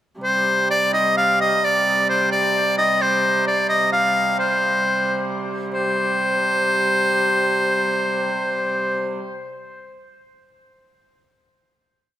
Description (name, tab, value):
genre	medieval dance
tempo	85-93 BPM (dotted quarters)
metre	6/8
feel	straight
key	C minor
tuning	A4 = 440 Hz
part	edgy shawm	melody	0.2-9.1 s	C5 to F5	-18 LUFS	equal	tape echo
part	warm hurdy-gurdy	drone	0.2-9.2 s	C3 to G3	-26 LUFS	right 2 dB	none
room	moderate recital hall reverb, RT60 1.4 s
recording	none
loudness	-17 LUFS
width	side -12 dB against mid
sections	0.2-5.7 A section; 5.7-8.4 final chord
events	speeding up 0.2-8.4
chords	none